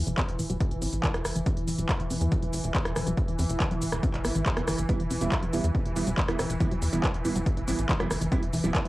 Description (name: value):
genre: driving peak-time techno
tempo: 140 BPM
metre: 4/4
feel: straight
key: E minor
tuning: A4 = 441 Hz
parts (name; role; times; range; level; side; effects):
- tight sequencer bass; bass; 0.0-8.9 s; D1 to E2; -31 LUFS; equal; tube saturation, sidechain pumping
- swarming drone; drone; 0.0-8.9 s; E3; -34 LUFS; equal; built-in reverb, sidechain pumping, cassette tape
- tight sequenced synth; riff; 0.1-8.9 s; E3 to C4; -34 LUFS; equal; chorus, tube saturation, sidechain pumping, cassette tape, analog delay
- techno drum kit; drums; 0.1-8.9 s; handclaps, hi-hat, rim click, shaker; -32 LUFS; equal; sidechain pumping on hats, cassette tape, sidechain pumping on perc
- electronic kick drum; drums; 0.2-8.8 s; none; -28 LUFS; equal; cassette tape
- wavetable chord stab; stabs; 4.9-8.8 s; G3 to E4; -32 LUFS; right 4 dB; cassette tape, sidechain pumping, analog delay
room: moderate studio reverb, RT60 0.5 s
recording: home recording on cassette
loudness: -25 LUFS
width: side -18 dB against mid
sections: 0.0-8.9 A section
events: filter sweep on synth arpeggio sound 0.0-8.9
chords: 0.0 Em